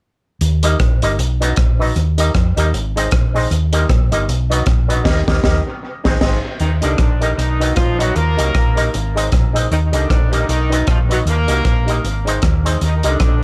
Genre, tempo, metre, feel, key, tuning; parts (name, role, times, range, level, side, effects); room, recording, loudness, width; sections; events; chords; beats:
ska; 155 BPM; 4/4; swing 58% on 8ths; Eb major; A4 = 441 Hz
hollow-body short-scale fingered electric bass; bass; 0.4-13.4 s; G1 to F2; -20 LUFS; equal
crunchy breakbeat drum kit; drums; 0.4-13.3 s; crash cymbal, hi-hat, kick drum, rim click, snare drum; -20 LUFS; equal; dub echo
electric guitar with an envelope filter; accompaniment; 0.6-13.2 s; F#3 to Eb4; -27 LUFS; equal; harmonic tremolo, dub echo
dark upright piano; stabs; 0.6-13.1 s; Eb4 to Eb5; -25 LUFS; equal
warm horn section; melody; 6.6-13.4 s; D3 to Bb4; -24 LUFS; equal; dub echo
little or no reverb; -16 LUFS; mono
0.4-6.6 A section; 6.6-13.4 B section
band accent 5.1-6.6
0.4 Eb; 1.2 B; 2.0 Eb; 2.7 Ab; 3.5 Eb; 4.3 B; 5.1 Eb; 5.8 Ab; 6.6 Eb; 7.4 B; 8.2 Eb; 8.9 Ab; 9.7 Eb; 10.5 B; 11.3 Eb; 12.0 Ab; 12.8 Eb
| 0.41 0.80 1.19 1.57 | 1.96 2.35 2.73 3.12 | 3.51 3.90 4.28 4.67 | 5.06 5.45 5.83 6.22 | 6.61 7.00 7.38 7.77 | 8.16 8.54 8.93 9.32 | 9.71 10.10 10.48 10.87 | 11.26 11.65 12.04 12.42 | 12.81 13.20